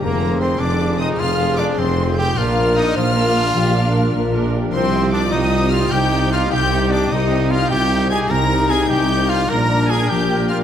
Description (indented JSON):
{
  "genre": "cinematic",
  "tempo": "101 BPM (dotted quarters)",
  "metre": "12/8",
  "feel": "straight",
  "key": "C minor",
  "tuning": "A4 = 441 Hz",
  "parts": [
    { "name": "rich symphonic violin section", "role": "melody", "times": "0.0-10.6 s", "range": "Bb5 to Bb6", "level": "-26 LUFS", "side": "left 3 dB", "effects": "none" },
    { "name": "warm symphonic violin section", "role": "second line", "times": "0.0-10.6 s", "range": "Bb4 to Bb5", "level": "-25 LUFS", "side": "left 2 dB", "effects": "none" },
    { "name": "dark French horn section", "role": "sustained chords", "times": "0.0-10.6 s", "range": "D4 to C5", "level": "-23 LUFS", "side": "left 4 dB", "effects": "none" },
    { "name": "concert harp", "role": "arpeggios", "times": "0.0-10.6 s", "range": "F2 to Eb5", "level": "-26 LUFS", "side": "left 7 dB", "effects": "none" },
    { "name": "bright trumpet", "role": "stabs", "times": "0.0-10.6 s", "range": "Bb3 to Bb4", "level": "-23 LUFS", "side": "right 1 dB", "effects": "none" },
    { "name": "mellow tuba", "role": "bass", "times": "0.0-10.6 s", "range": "F1 to C2", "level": "-23 LUFS", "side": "right 2 dB", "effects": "none" },
    { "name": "warm symphonic cello section", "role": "bass", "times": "0.0-10.6 s", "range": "F2 to C3", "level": "-24 LUFS", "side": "right 2 dB", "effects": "none" },
    { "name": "warm symphonic double bass section", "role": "bass", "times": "0.0-10.6 s", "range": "F1 to C2", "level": "-24 LUFS", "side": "right 2 dB", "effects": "none" },
    { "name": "warm studio viola section", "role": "accompaniment", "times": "0.2-10.6 s", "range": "C4 to Bb4", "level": "-26 LUFS", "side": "right 1 dB", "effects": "none" }
  ],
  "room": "moderate scoring stage reverb, RT60 1.9 s",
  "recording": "none",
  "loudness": "-15 LUFS",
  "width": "side -9 dB against mid",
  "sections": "0.0-10.6 A section",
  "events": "none",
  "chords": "0.0 Fm; 2.4 Bb; 4.7 Cm; 9.5 Bb",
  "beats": "| 0.02 0.61 1.20 1.79 | 2.38 2.97 3.56 4.14 | 4.73 5.32 5.92 6.51 | 7.11 7.71 8.30 8.90 | 9.50 10.10"
}